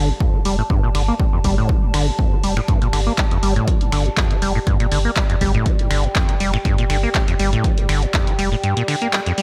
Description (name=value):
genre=acid house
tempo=121 BPM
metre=4/4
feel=swing 54% on 16ths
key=unclear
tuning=A4 = 442 Hz
part: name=liquid acid bass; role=riff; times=0.0-9.4 s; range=F2 to Bb3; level=-24 LUFS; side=equal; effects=chorus, tube saturation, sidechain pumping, delay
part: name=warm sub bass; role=bass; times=0.0-8.6 s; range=F1 to G1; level=-23 LUFS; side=equal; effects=tube saturation, sidechain pumping
part: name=warbly tape-like pad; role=texture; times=0.0-9.4 s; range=G4 to A5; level=-30 LUFS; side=equal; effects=chorus, built-in reverb, sidechain pumping
part: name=electronic kick drum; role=drums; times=0.2-8.2 s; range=none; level=-21 LUFS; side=equal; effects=none
part: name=punchy analog drum machine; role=drums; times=0.5-9.4 s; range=finger snaps, handclaps, hi-hat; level=-27 LUFS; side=equal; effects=none
room=little or no reverb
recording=none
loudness=-18 LUFS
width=mono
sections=0.0-9.4 A section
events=filter sweep on acid bass 0.0-9.4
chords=0.0 G5